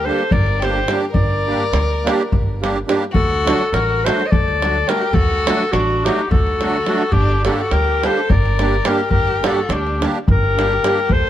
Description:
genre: balkan folk, Balkan wedding band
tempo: 211 BPM (eighths)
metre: 7/8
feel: straight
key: G harmonic minor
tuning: A4 = 440 Hz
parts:
  - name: warm clarinet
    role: melody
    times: 0.0-11.3 s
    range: F#4 to Eb5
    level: -20 LUFS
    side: left 2 dB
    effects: none
  - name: warm violin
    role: second line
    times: 0.0-11.3 s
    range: D4 to C5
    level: -24 LUFS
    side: left 3 dB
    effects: none
  - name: musette accordion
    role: accompaniment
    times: 0.0-11.0 s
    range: F#3 to G4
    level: -22 LUFS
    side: right 3 dB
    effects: none
  - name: upright bass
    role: bass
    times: 0.0-11.3 s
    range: G1 to D2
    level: -21 LUFS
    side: equal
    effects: none
  - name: davul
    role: percussion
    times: 0.2-11.3 s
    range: none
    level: -20 LUFS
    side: equal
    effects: none
room: light reverb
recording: none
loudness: -15 LUFS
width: side -12 dB against mid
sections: 0.0-3.1 A section; 3.1-11.3 A section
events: none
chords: 0.0 Gm; 3.1 D; 7.1 Gm

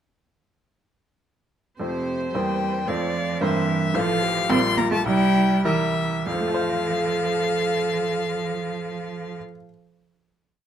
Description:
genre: quick classical-period movement for piano quartet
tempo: 95-114 BPM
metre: 2/4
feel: rubato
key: F major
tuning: A4 = 437 Hz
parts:
  - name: rich violin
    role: melody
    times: 1.8-9.4 s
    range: C5 to C6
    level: -27 LUFS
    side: left 7 dB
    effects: none
  - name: rich cello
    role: second line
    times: 1.8-9.4 s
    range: C3 to C4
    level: -25 LUFS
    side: right 4 dB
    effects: none
  - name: bright baby grand piano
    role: accompaniment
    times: 1.8-9.7 s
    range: A1 to F5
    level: -27 LUFS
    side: right 1 dB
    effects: none
  - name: rich viola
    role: accompaniment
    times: 1.8-9.4 s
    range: E4 to D5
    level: -28 LUFS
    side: right 1 dB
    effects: none
room: light reverb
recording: close, detailed microphones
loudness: -21 LUFS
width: side -9 dB against mid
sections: 1.8-6.3 A section; 6.3-8.7 final chord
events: slowing down 3.4-6.3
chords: 1.8 F; 2.3 C7/E; 2.9 F; 3.4 C7/G; 3.9 F/A; 4.5 Gm7/Bb; 5.1 C7; 6.3 F

